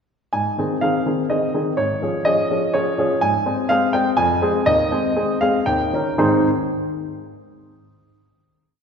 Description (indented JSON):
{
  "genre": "classical-period piano sonatina",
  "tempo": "123 BPM",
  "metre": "3/4",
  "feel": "uneven beats, rubato",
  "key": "Ab major",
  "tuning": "A4 = 439 Hz",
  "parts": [
    { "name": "clear grand piano", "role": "solo", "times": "0.3-6.5 s", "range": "Eb2 to C6", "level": "-17 LUFS", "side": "equal", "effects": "none" }
  ],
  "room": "wet concert hall reverb, RT60 2.1 s",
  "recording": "recorded in a church or concert hall, lossy compression artefacts",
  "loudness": "-17 LUFS",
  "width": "side -6 dB against mid",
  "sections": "0.3-6.2 theme; 6.2-7.7 final chord",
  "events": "none",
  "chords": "0.3 Ab; 1.8 Db/Ab; 3.2 Ab; 4.2 Fm; 4.7 Ab/Eb; 5.7 Eb7; 6.2 Ab",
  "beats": "| 0.34 0.83 1.30 | 1.78 2.27 2.75 | 3.22 3.70 4.18 | 4.67 5.16 5.67 | 6.19"
}